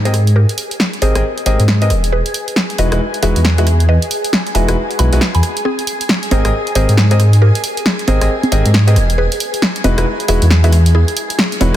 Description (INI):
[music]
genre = UK garage, two-step garage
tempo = 136 BPM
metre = 4/4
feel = swing 62% on 16ths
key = unclear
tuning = A4 = 440 Hz
[part]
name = soft string machine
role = sustained chords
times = 0.0-11.8 s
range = Ab4 to Ab5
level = -25 LUFS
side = equal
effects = phaser, ensemble chorus
[part]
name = dark detuned saw bass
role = bass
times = 0.0-11.8 s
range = E1 to Ab2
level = -12 LUFS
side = equal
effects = none
[part]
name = mallet-like synth pluck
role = melody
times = 0.1-11.8 s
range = C4 to B5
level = -22 LUFS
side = equal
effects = chorus, ping-pong delay
[part]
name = warm concert grand piano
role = stabs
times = 0.1-11.8 s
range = G#3 to Eb5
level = -21 LUFS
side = left 1 dB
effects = low-pass filter, ping-pong delay
[part]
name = punchy analog drum machine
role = drums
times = 0.1-11.7 s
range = congas, hi-hat, rim click, snare drum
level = -18 LUFS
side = equal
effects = none
[sound]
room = light reverb, digital ambience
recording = dense, heavily limited modern master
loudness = -11 LUFS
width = side -12 dB against mid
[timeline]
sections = 0.0-11.8 A section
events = build-up 0.0-11.8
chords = 0.0 Abmaj9; 1.9 Emaj9; 5.7 Abmaj9; 9.0 Emaj9